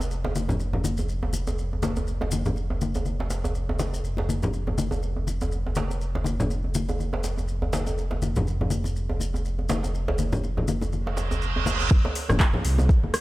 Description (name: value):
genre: afro house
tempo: 122 BPM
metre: 4/4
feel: swing 57% on 16ths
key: unclear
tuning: A4 = 440 Hz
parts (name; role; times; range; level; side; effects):
- dark detuned saw bass; bass; 0.0-13.1 s; F1 to C2; -28 LUFS; equal; sidechain pumping
- djembe; percussion; 0.0-13.1 s; none; -31 LUFS; right 2 dB; none
- maracas; percussion; 0.0-13.2 s; none; -40 LUFS; left 3 dB; none
- congas; percussion; 0.2-13.2 s; none; -29 LUFS; left 2 dB; none
- reverse cymbal; sound effects; 11.1-11.9 s; none; -30 LUFS; right 6 dB; none
- electronic kick drum; drums; 11.9-13.0 s; none; -19 LUFS; equal; studio reverb
- afro-pop drum kit; drums; 12.2-13.2 s; handclaps, hi-hat, rim click; -27 LUFS; equal; low-pass filter on hats, studio reverb, low-pass filter on snare
room: small room reverb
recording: none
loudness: -24 LUFS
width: side -18 dB against mid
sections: 0.0-11.9 A section; 11.9-13.2 B section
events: reverse cymbal 11.1-11.9; drop 11.9-13.2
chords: none